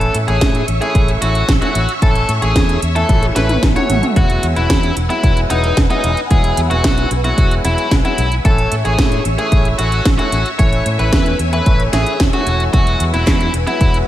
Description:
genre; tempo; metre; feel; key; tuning
italo disco; 112 BPM; 4/4; straight; unclear; A4 = 438 Hz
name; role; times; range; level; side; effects
nasal lead guitar with a parked wah; melody; 0.0-14.0 s; D#4 to C#5; -20 LUFS; left 1 dB; overdrive, ping-pong delay, shimmer reverb
phased string machine; sustained chords; 0.0-14.1 s; B4 to E6; -24 LUFS; equal; ensemble chorus, phaser, shimmer reverb
bright grand piano; stabs; 0.0-14.0 s; E3 to F#4; -22 LUFS; equal; shimmer reverb
fingered electric bass with an envelope filter; bass; 0.0-14.0 s; E1 to A2; -18 LUFS; equal; none
house drum kit; drums; 0.0-14.0 s; handclaps, hi-hat, snare drum, toms; -20 LUFS; right 1 dB; studio reverb, gated reverb
electronic kick drum; drums; 0.4-13.9 s; none; -15 LUFS; equal; studio reverb
room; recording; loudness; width
light reverb, digital ambience; none; -12 LUFS; side -13 dB against mid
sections
0.0-14.1 A section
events
drum fill 3.1-4.2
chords
0.0 A; 4.2 Eadd9; 8.4 A; 12.7 Eadd9

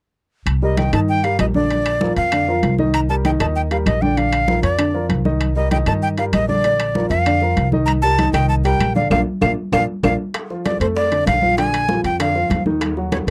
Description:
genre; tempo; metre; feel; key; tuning
latin, salsa; 194 BPM; 4/4; straight; Bb major; A4 = 440 Hz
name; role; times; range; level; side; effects
upright bass; bass; 0.5-13.3 s; Bb1 to G2; -23 LUFS; equal; none
claves; percussion; 0.5-10.1 s; none; -35 LUFS; equal; none
congas; percussion; 0.5-13.3 s; none; -27 LUFS; equal; none
timbales; percussion; 0.5-13.3 s; none; -30 LUFS; equal; none
breathy bright jazz flute; melody; 0.6-13.3 s; C5 to Bb5; -22 LUFS; equal; none
warm upright piano; accompaniment; 0.6-13.3 s; D3 to Eb5; -24 LUFS; equal; none
bongos; percussion; 10.3-13.3 s; none; -32 LUFS; equal; none
room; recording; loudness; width
light reverb; dry, close 1970s-style studio recording; -18 LUFS; mono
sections
0.5-10.3 A section; 10.3-13.3 B section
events
band accent 9.1-10.3; drum fill 9.9-10.3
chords
0.5 Cm7; 1.7 Bb; 2.9 Cm7; 4.2 Bb; 5.4 Cm7; 6.6 Bb; 7.9 Cm7; 9.1 Bb; 10.3 Bbmaj7; 11.6 Bb7

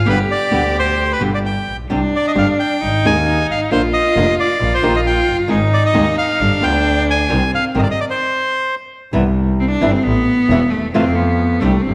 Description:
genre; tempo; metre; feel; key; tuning
tango; 132 BPM; 4/4; rubato; C minor; A4 = 440 Hz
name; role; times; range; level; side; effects
bandoneon; melody; 0.0-8.8 s; B4 to Ab5; -20 LUFS; equal; none
clear cello; second line; 0.0-11.9 s; A3 to G4; -21 LUFS; equal; none
clear double bass; bass; 0.0-11.9 s; E1 to F2; -21 LUFS; equal; none
flamenco guitar; accompaniment; 0.1-11.7 s; B2 to Ab4; -23 LUFS; equal; none
room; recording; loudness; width
wet scoring stage reverb, RT60 1.7 s; none; -16 LUFS; mono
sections
0.0-9.1 A section; 9.1-11.9 B section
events
stop 8.2-9.1; cello solo 9.1-11.9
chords
0.1 G; 1.9 Csus2; 2.8 Ab5; 3.7 Bb; 4.6 Eb/Bb; 5.5 Ab; 6.4 G7(no3); 7.3 Cm; 9.1 C; 10.1 A5; 10.9 F

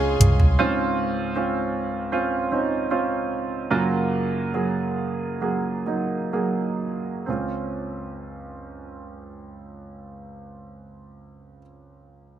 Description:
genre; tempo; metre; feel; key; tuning
pop ballad; 61-79 BPM; 4/4; straight; Db major; A4 = 441 Hz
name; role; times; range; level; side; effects
warm grand piano; accompaniment; 0.0-12.4 s; Db2 to Ab4; -24 LUFS; right 3 dB; analog chorus
dark studio string section; sustained chords; 0.0-0.5 s; Ab4 to C6; -35 LUFS; left 4 dB; none
fingerpicked plugged-in steel-string acoustic guitar; arpeggios; 0.0-1.2 s; Db3 to F4; -35 LUFS; left 4 dB; none
vintage muted fingered electric bass; bass; 0.0-0.6 s; C2 to Db2; -20 LUFS; equal; none
smooth R&B drum kit; drums; 0.2-0.6 s; hi-hat, toms; -19 LUFS; right 1 dB; none
room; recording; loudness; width
light reverb; bright 1980s-style digital production; -22 LUFS; side -10 dB against mid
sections
0.6-7.3 A section; 7.3-11.2 B section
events
drum fill 0.0-0.6; slowing down 0.6-7.3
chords
0.0 Dbmaj7; 3.7 Gbmaj7; 7.3 Dbmaj7

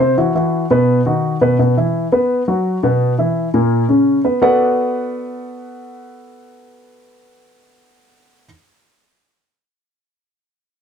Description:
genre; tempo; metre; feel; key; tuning
jazz; 170 BPM; 4/4; straight; B minor; A4 = 441 Hz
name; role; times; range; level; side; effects
dark baby grand piano; solo; 0.0-8.5 s; A#2 to F#5; -14 LUFS; equal; none
room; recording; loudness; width
light reverb; dark, warm production; -13 LUFS; side -7 dB against mid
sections
0.0-1.6 A section; 1.6-4.4 B section; 4.4-7.3 C section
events
none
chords
0.2 Bsus4; 0.9 B; 1.6 E5; 2.3 B5; 3.0 E5; 3.7 A#m; 4.4 Bm7

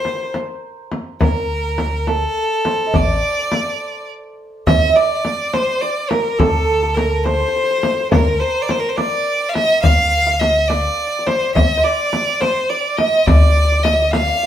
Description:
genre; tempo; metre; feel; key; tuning
Persian modal ensemble; 70 BPM (dotted quarters); 6/8; straight; D dastgah shur; A4 = 440 Hz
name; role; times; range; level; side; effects
bright violin; melody; 0.0-14.5 s; A4 to F5; -18 LUFS; equal; none
santur; second line; 0.0-14.5 s; A4 to F5; -22 LUFS; right 4 dB; none
frame drum; percussion; 0.1-14.3 s; none; -20 LUFS; left 1 dB; none
tombak; percussion; 0.1-14.3 s; none; -24 LUFS; left 2 dB; none
upright bass; bass; 1.2-14.3 s; A1 to D2; -18 LUFS; equal; none
room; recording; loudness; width
wet studio reverb, RT60 0.7 s; band playing live in one room; -14 LUFS; side -10 dB against mid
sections
0.0-4.7 A section; 4.7-14.5 B section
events
break 3.8-4.7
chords
none

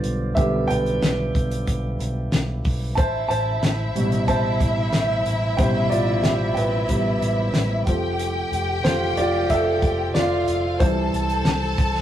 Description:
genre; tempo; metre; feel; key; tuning
piano-driven pop; 92 BPM; 4/4; straight; unclear; A4 = 439 Hz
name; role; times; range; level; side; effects
warm grand piano; accompaniment; 0.0-12.0 s; B2 to A5; -23 LUFS; right 1 dB; none
vintage muted fingered electric bass; bass; 0.0-12.0 s; F1 to C2; -26 LUFS; equal; none
damped 70s drum kit; drums; 0.0-12.0 s; hi-hat, kick drum, snare drum; -23 LUFS; equal; none
rich studio violin section; second line; 3.0-12.0 s; E4 to A5; -26 LUFS; equal; none
room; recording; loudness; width
moderate studio reverb, RT60 0.6 s; rough rehearsal-room recording, lossy compression artefacts; -19 LUFS; side -11 dB against mid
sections
0.0-12.0 A section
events
grand piano solo 0.0-12.0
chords
0.0 G/B; 3.0 Am7; 7.9 F; 10.8 C

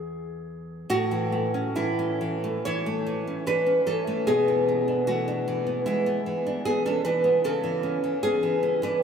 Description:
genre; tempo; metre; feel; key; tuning
classical; 64-76 BPM; 4/4; rubato; A major; A4 = 445 Hz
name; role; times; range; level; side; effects
nylon-string guitar; accompaniment; 0.0-9.0 s; E2 to C#5; -23 LUFS; equal; wide subtle chorus
room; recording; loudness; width
wet cathedral reverb, RT60 6.8 s; dreamy mix soaked in reverb; -23 LUFS; side -7 dB against mid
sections
0.9-9.0 A section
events
none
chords
0.0 N.C.; 0.9 A; 4.3 E7/B; 7.5 A/C#

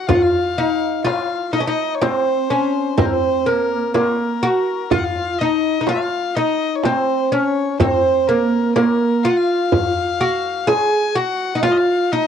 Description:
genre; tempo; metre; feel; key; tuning
Arabic maqam ensemble; 125 BPM (eighths); 10/8; straight; F maqam kurd; A4 = 444 Hz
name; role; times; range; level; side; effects
oud; melody; 0.0-12.3 s; Bb3 to Ab4; -17 LUFS; right 1 dB; none
rich violin; second line; 0.0-12.3 s; Bb4 to Ab5; -24 LUFS; left 8 dB; none
darbuka; percussion; 0.1-11.9 s; none; -24 LUFS; left 6 dB; none
frame drum; percussion; 0.1-11.9 s; none; -21 LUFS; right 7 dB; none
room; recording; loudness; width
moderate booth ambience, RT60 0.2 s; home recording on cassette; -16 LUFS; side -8 dB against mid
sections
0.1-12.3 A section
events
none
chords
none

